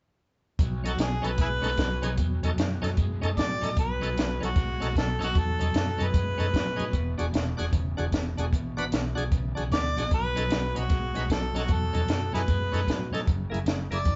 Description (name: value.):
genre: electric blues shuffle.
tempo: 152 BPM.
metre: 4/4.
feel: swing 64% on 8ths.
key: B mixolydian.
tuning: A4 = 440 Hz.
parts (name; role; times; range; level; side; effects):
electric guitar at the edge of break-up; riff; 0.6-14.2 s; E2 to G#3; -36 LUFS; equal; harmonic tremolo.
vintage muted fingered electric bass; bass; 0.6-14.2 s; E1 to A2; -33 LUFS; equal; none.
compact cocktail drum kit; drums; 0.6-14.2 s; hi-hat, kick drum, snare drum; -31 LUFS; equal; none.
bright tonewheel organ; accompaniment; 0.8-14.0 s; A#3 to B4; -36 LUFS; equal; slow rotary speaker, overdrive.
warm harmonica; melody; 0.9-7.2, 9.7-14.2 s; E4 to D5; -33 LUFS; equal; overdrive.
room: moderate studio reverb, RT60 0.6 s.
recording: band playing live in one room, nothing above 7.8 kHz.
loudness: -27 LUFS.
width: mono.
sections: 0.6-14.2 A section.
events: none.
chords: 0.6 B9; 6.9 E9; 10.1 B9; 13.3 F#9.